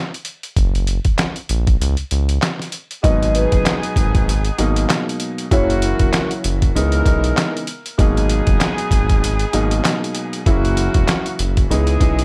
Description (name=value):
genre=hip hop, boom-bap hip-hop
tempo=97 BPM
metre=4/4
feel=swing 57% on 16ths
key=G# minor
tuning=A4 = 441 Hz
part: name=trip hop sampler-style drum kit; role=drums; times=0.1-12.2 s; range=handclaps, hi-hat, kick drum, snare drum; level=-21 LUFS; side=equal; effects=none
part: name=smooth gliding synth bass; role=bass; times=0.6-12.2 s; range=E1 to C#2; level=-21 LUFS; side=equal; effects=none
part: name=vibraphone with soft mallets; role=melody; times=3.0-6.3 s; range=A#4 to D#5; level=-26 LUFS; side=equal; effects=high-pass filter, low-pass filter, delay
part: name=dark upright piano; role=accompaniment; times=3.0-12.2 s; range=B2 to E4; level=-24 LUFS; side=equal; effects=high-pass filter, low-pass filter
part: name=clear saxophone section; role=stabs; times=3.0-12.2 s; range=G#3 to A#4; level=-28 LUFS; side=equal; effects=high-pass filter, low-pass filter, delay
room=little or no reverb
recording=none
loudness=-18 LUFS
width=mono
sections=0.0-3.0 A section; 3.0-12.2 B section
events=break 0.0-3.0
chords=0.0 N.C.; 0.6 F#; 1.8 N.C.; 3.0 G#m9; 5.5 F#7; 6.8 C#m9; 8.0 G#m9; 10.5 F#7; 11.7 C#m9